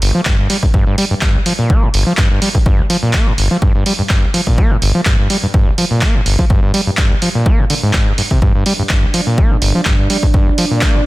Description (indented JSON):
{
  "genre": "acid house",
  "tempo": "125 BPM",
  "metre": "4/4",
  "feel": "swing 54% on 16ths",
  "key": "G minor",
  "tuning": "A4 = 440 Hz",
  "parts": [
    { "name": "overdriven acid bass", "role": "riff", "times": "0.0-11.0 s", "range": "G1 to Bb3", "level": "-15 LUFS", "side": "equal", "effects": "distortion, digital delay" },
    { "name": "punchy analog drum machine", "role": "drums", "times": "0.0-10.9 s", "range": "handclaps, hi-hat", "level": "-19 LUFS", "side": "right 2 dB", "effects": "none" },
    { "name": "electronic kick drum", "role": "drums", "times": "0.3-10.9 s", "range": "none", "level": "-13 LUFS", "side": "equal", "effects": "none" },
    { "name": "dark analog pad", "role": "sustained chords", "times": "8.4-11.1 s", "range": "D5", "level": "-22 LUFS", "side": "right 3 dB", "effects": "chorus, sidechain pumping" }
  ],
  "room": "little or no reverb",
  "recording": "dense, heavily limited modern master",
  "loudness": "-11 LUFS",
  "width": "side -19 dB against mid",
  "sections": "0.0-11.1 A section",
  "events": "none",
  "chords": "0.0 Gm"
}